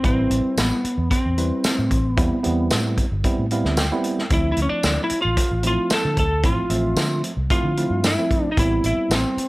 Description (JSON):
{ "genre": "straight-eighth soul blues", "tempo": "112 BPM", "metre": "4/4", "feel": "straight", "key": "A minor", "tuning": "A4 = 440 Hz", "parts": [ { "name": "lightly driven lead guitar", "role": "melody", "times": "0.0-9.5 s", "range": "B3 to A4", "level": "-22 LUFS", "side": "equal", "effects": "none" }, { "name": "tine electric piano", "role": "accompaniment", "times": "0.0-9.4 s", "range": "F3 to G5", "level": "-25 LUFS", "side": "right 2 dB", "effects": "none" }, { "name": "vintage muted fingered electric bass", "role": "bass", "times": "0.0-9.4 s", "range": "G1 to D3", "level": "-23 LUFS", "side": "equal", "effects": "none" }, { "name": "warm soul drum kit", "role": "drums", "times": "0.0-9.5 s", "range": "hi-hat, kick drum, snare drum, tambourine", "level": "-23 LUFS", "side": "equal", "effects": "none" } ], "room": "light reverb", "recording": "none", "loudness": "-18 LUFS", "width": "side -20 dB against mid", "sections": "0.0-9.5 A section", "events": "tine electric piano fill 3.2-4.3", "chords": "0.0 Am9; 4.3 Dm9; 8.6 Am9" }